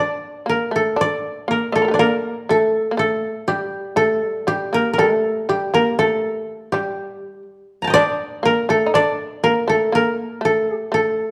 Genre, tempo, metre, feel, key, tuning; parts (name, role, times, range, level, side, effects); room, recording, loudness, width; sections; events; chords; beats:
japanese traditional, Japanese chamber music; 60 BPM; 4/4; rubato; A4 = 441 Hz
koto; melody; 0.0-11.3 s; G4 to Bb5; -20 LUFS; equal
shamisen; second line; 0.0-11.3 s; G3 to Eb5; -25 LUFS; equal
moderate recital hall reverb, RT60 1.3 s; dark, warm production; -19 LUFS; mono
0.0-11.3 A section
1.00 2.02 3.02 | 4.01 5.00 6.00 6.98 | 7.95 8.95 9.94 10.93